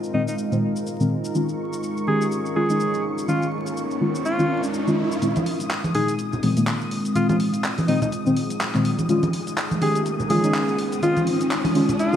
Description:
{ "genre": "deep house", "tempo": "124 BPM", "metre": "4/4", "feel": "swing 57% on 16ths", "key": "Bb minor", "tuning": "A4 = 439 Hz", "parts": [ { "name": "deep dark ambient pad", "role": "sustained chords", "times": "0.0-12.2 s", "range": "Ab3 to Bb4", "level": "-28 LUFS", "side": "equal", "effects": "chorus, built-in reverb" }, { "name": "deep mellow chord stab", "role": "stabs", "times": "0.0-12.2 s", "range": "Bb2 to G4", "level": "-23 LUFS", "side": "left 1 dB", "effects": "chorus, analog delay" }, { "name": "deep house drum kit", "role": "drums", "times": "0.0-12.2 s", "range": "handclaps, hi-hat, shaker", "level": "-31 LUFS", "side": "equal", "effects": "studio reverb" }, { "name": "downlifter and riser", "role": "sound effects", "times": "2.5-12.2 s", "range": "none", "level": "-31 LUFS", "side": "equal", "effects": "none" }, { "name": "clear alto saxophone", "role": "melody", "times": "0.1-12.2 s", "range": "Eb4 to Ab4", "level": "-27 LUFS", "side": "equal", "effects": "analog delay" }, { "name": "analog string pad", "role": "texture", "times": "1.3-12.2 s", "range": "Db6 to Eb6", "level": "-36 LUFS", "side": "left 2 dB", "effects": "ensemble chorus" }, { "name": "congas", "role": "percussion", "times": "5.4-12.0 s", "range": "none", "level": "-27 LUFS", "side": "right 1 dB", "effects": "none" } ], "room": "moderate lush hall reverb, RT60 2.3 s", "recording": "vinyl crackle", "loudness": "-20 LUFS", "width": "side -9 dB against mid", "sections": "0.0-5.2 A section; 5.2-12.2 B section", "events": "riser 2.5-5.2, 5.2-12.2; build-up 5.2-12.2; filter sweep on ambient pad 5.2-12.2", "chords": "0.0 Bb9sus4; 1.3 Eb9sus4; 5.2 Bb9sus4; 9.1 Eb9sus4" }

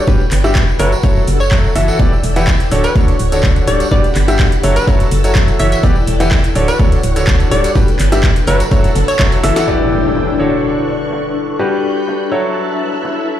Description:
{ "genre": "piano house", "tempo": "125 BPM", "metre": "4/4", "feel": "straight", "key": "unclear", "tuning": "A4 = 439 Hz", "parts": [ { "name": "string machine, violins", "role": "sustained chords", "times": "0.0-13.4 s", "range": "D4 to G6", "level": "-23 LUFS", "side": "left 1 dB", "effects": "ensemble chorus, sidechain pumping" }, { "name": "granular cloud pad", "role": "texture", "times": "0.0-13.4 s", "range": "D4 to C#6", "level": "-22 LUFS", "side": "left 4 dB", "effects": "built-in reverb, sidechain pumping" }, { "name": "bright grand piano", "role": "riff", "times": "0.1-13.4 s", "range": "D3 to F#5", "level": "-17 LUFS", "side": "equal", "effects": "sidechain pumping, tape echo" }, { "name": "organ-like FM bass", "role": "bass", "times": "0.1-9.5 s", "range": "D1 to G2", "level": "-16 LUFS", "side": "equal", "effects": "sidechain pumping" }, { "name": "electronic kick drum", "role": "drums", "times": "0.1-9.3 s", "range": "none", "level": "-13 LUFS", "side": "equal", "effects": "overdrive" }, { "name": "open jazz drum kit", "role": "drums", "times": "0.1-13.4 s", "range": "hi-hat, snare drum", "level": "-34 LUFS", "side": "left 3 dB", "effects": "none" }, { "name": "tambourine", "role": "percussion", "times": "0.1-9.7 s", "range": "none", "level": "-32 LUFS", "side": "right 3 dB", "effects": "none" }, { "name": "garage drum kit", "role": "drums", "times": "0.3-13.1 s", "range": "handclaps, hi-hat, snare drum", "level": "-23 LUFS", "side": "equal", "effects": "overdrive, low-pass filter on hats, low-pass filter on snare" }, { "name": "hollow square pluck", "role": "melody", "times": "0.8-9.6 s", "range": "B4 to E5", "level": "-22 LUFS", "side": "right 1 dB", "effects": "chorus, tape echo" }, { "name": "impact", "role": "sound effects", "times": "9.7-11.6 s", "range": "none", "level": "-21 LUFS", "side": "equal", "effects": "none" } ], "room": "light reverb, studio reverb", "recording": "played on a big sound system in a bare room, large studio reverb", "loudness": "-11 LUFS", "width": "side -11 dB against mid", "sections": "0.0-9.7 A section; 9.7-13.4 B section", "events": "fade-in on ambient pad 0.0-9.7; drum fill 9.4; band accent 9.6; impact 9.7-11.6", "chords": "0.1 Gmaj7; 0.8 F#m7; 2.0 Em7; 2.7 Dmaj7; 3.9 Gmaj7; 4.6 F#m7; 5.8 Em7; 6.6 Dmaj7; 7.8 Gmaj7; 8.5 F#m7; 9.7 Em7; 10.4 Dmaj7; 11.6 Gmaj7; 12.3 F#m7" }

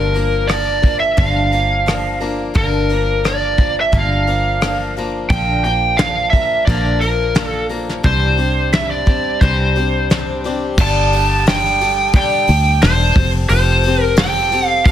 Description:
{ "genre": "folk rock and heartland rock", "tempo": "88 BPM", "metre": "4/4", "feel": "straight", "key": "G dorian", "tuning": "A4 = 440 Hz", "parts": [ { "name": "lead guitar through a small cranked amp", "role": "melody", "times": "0.0-14.9 s", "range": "Bb4 to A5", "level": "-17 LUFS", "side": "right 1 dB", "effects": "overdrive" }, { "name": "picked swing-style acoustic guitar", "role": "accompaniment", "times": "0.0-14.9 s", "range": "G2 to Bb4", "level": "-22 LUFS", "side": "left 3 dB", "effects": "none" }, { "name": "fingered electric bass", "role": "bass", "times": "0.0-14.8 s", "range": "E1 to D2", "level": "-19 LUFS", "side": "equal", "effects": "none" }, { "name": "soft brush drum kit", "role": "drums", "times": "0.2-14.9 s", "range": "crash cymbal, hi-hat, kick drum, rim click, snare drum", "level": "-17 LUFS", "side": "equal", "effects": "soft clipping on snare" } ], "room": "studio ambience", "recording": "dense, heavily limited modern master", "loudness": "-13 LUFS", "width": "side -10 dB against mid", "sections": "0.0-10.8 A section; 10.8-14.9 B section", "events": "none", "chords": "0.0 Gm7; 5.3 Bb; 8.1 Cadd9; 10.8 Gsus2; 13.2 Fadd9" }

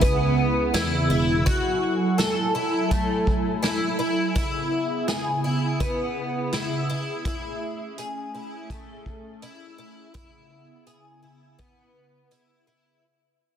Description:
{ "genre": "dream pop", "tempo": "83 BPM", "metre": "4/4", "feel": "straight", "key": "C# minor", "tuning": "A4 = 440 Hz", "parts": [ { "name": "hollow soft pad", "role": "sustained chords", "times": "0.0-13.0 s", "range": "C#3 to G#5", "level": "-26 LUFS", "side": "right 2 dB", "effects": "ensemble chorus" }, { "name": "picked twelve-string acoustic guitar", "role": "arpeggios", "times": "0.0-13.0 s", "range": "A3 to A4", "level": "-26 LUFS", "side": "left 1 dB", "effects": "ensemble chorus, tape echo" }, { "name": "sustaining fretless electric bass", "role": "bass", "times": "0.0-1.4 s", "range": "E1 to E2", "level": "-27 LUFS", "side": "equal", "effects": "none" }, { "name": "vintage drum kit", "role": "drums", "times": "0.0-12.5 s", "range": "hi-hat, kick drum, snare drum", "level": "-27 LUFS", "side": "equal", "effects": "none" } ], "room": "moderate lush hall reverb, RT60 2.7 s", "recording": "dense, heavily limited modern master", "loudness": "-22 LUFS", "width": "side -9 dB against mid", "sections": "0.0-13.0 A section", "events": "fade-out 0.0-13.0", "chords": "0.0 C#m7; 1.5 F#m9; 4.4 C#m7; 7.2 Amaj7; 10.1 C#m7" }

